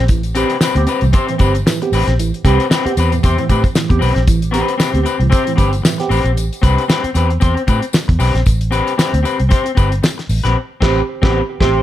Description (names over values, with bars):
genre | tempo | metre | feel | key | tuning
funk | 115 BPM | 4/4 | swing 56% on 16ths | A minor | A4 = 441 Hz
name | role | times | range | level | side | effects
electric guitar at the edge of break-up | accompaniment | 0.0-11.8 s | C4 to C5 | -18 LUFS | left 4 dB | vibrato effect
vintage muted fingered electric bass | bass | 0.0-11.8 s | G1 to A2 | -16 LUFS | equal | none
barky tine electric piano | stabs | 0.1-6.2, 10.8-11.8 s | A2 to G4 | -21 LUFS | right 6 dB | overdrive, phaser, tape echo
damped 70s drum kit | drums | 0.1-11.8 s | crash cymbal, hi-hat, kick drum, snare drum | -16 LUFS | equal | none
tambourine | percussion | 0.1-10.4 s | none | -32 LUFS | left 5 dB | none
room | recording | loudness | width
light reverb | dark, warm production | -12 LUFS | side -13 dB against mid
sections
0.0-11.8 A section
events
band accent 10.6-11.8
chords
0.0 Am9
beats
| 0.09 0.61 1.14 1.66 | 2.18 2.71 3.23 3.75 | 4.28 4.80 5.32 5.85 | 6.37 6.89 7.42 7.94 | 8.46 8.99 9.51 10.04 | 10.56 11.08 11.61